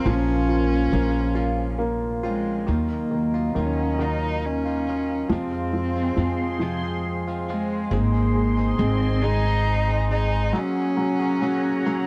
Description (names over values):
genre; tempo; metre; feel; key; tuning
six-eight pop ballad; 46 BPM (dotted quarters); 6/8; straight; unclear; A4 = 440 Hz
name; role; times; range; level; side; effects
dark cello; melody; 0.0-12.1 s; Ab3 to Eb4; -28 LUFS; equal; none
clear upright piano; accompaniment; 0.0-12.1 s; Eb3 to F4; -31 LUFS; equal; none
sweeping resonant pad; sustained chords; 0.0-12.1 s; Gb3 to C6; -35 LUFS; equal; chorus
direct-recorded clean electric guitar; arpeggios; 0.0-12.1 s; F2 to Ab4; -36 LUFS; equal; none
upright bass; bass; 0.1-10.5 s; Ab1 to F2; -28 LUFS; equal; transformer saturation
room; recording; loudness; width
light reverb; dry, close 1970s-style studio recording; -23 LUFS; mono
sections
0.0-2.7 A section; 2.7-12.1 B section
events
upright piano fill 11.9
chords
0.0 Bbmadd9; 2.7 Ebmadd9; 5.3 Fm; 7.9 Ab; 10.5 Gbadd9